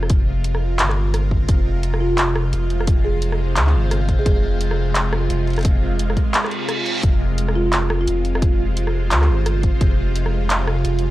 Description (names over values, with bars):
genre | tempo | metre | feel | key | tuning
half-time drum and bass | 173 BPM | 4/4 | swing 60% on 16ths, half-time | F minor | A4 = 440 Hz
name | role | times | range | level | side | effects
bowed-like drone | sustained chords | 0.0-11.1 s | C3 to Eb5 | -25 LUFS | right 1 dB | built-in reverb, phaser, sidechain pumping
saturated sub bass | bass | 0.0-11.1 s | F1 to D2 | -20 LUFS | equal | transformer saturation
drum and bass drum kit | drums | 0.0-11.1 s | handclaps, hi-hat, rim click | -22 LUFS | equal | none
electronic kick drum | drums | 0.1-9.9 s | none | -18 LUFS | equal | none
marimba with medium mallets | melody | 2.0-4.3, 7.6-8.5 s | F4 to Ab4 | -26 LUFS | right 2 dB | analog delay
reverse cymbal | sound effects | 6.5-7.0 s | none | -25 LUFS | right 3 dB | none
room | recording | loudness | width
digital ambience | dry, gritty hardware recording, cassette tape | -16 LUFS | side -16 dB against mid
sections
0.0-11.1 A section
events
reverse cymbal 6.5-7.0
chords
0.0 Fm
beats
| 0.10 0.45 0.79 1.14 | 1.49 1.83 2.18 2.53 | 2.87 3.22 3.57 3.91 | 4.26 4.61 4.95 5.30 | 5.65 5.99 6.34 6.69 | 7.04 7.38 7.73 8.07 | 8.42 8.77 9.12 9.46 | 9.81 10.16 10.50 10.85